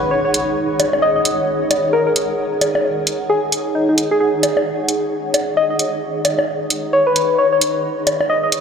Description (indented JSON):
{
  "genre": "UK garage, two-step garage",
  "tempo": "132 BPM",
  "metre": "4/4",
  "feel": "swing 60% on 16ths",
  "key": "unclear",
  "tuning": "A4 = 440 Hz",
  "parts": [
    { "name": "soft struck synth lead", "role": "melody", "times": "0.0-8.5 s", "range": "D#4 to D#5", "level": "-18 LUFS", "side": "left 1 dB", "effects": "chorus, phaser, vintage 12-bit sampler grit, diffuse ambient delay" },
    { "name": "granular cloud pad", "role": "texture", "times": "0.0-8.6 s", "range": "D#4 to F#5", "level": "-21 LUFS", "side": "right 1 dB", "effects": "built-in reverb, ensemble chorus" },
    { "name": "electronic hi-hat and bongos", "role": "drums", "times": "0.3-8.6 s", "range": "none", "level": "-20 LUFS", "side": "equal", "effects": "none" }
  ],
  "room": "wet cathedral reverb, RT60 6.0 s",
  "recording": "dreamy mix soaked in reverb",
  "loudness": "-15 LUFS",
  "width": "side -6 dB against mid",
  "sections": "0.0-8.6 A section",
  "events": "none",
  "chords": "0.0 G#7sus4"
}